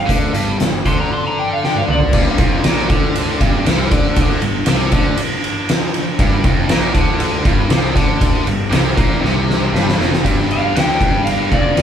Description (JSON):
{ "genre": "blues rock power trio and southern rock", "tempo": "118 BPM", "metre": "4/4", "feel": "straight", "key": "G minor", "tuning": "A4 = 440 Hz", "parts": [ { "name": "overdriven slide guitar", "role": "melody", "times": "0.0-2.1, 10.5-11.8 s", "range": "D5 to C6", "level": "-19 LUFS", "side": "equal", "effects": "none" }, { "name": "tight distorted guitar", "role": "riff", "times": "0.0-11.8 s", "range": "F2 to F3", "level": "-20 LUFS", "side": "equal", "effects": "distortion" }, { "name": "fuzz picked electric bass", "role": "bass", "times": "0.0-11.8 s", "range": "F1 to F2", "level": "-22 LUFS", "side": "equal", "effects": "overdrive" }, { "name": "oversized low-tuned drum kit", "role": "drums", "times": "0.1-11.8 s", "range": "crash cymbal, hi-hat, kick drum, ride cymbal, snare drum, toms", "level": "-15 LUFS", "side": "equal", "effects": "none" } ], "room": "light reverb", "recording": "band playing live in one room", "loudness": "-13 LUFS", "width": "side -9 dB against mid", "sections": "0.0-2.1 A section; 2.1-10.2 B section; 10.2-11.8 C section", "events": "drum fill 1.6-2.1, 9.2-10.2; electric slide guitar solo 10.2-11.8", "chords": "0.0 G5; 2.1 Gm; 10.2 G5", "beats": "| 0.08 0.59 1.10 1.62 | 2.12 2.63 3.14 3.65 | 4.16 4.67 5.17 5.68 | 6.18 6.69 7.20 7.70 | 8.21 8.72 9.22 9.73 | 10.24 10.74 11.25 11.76" }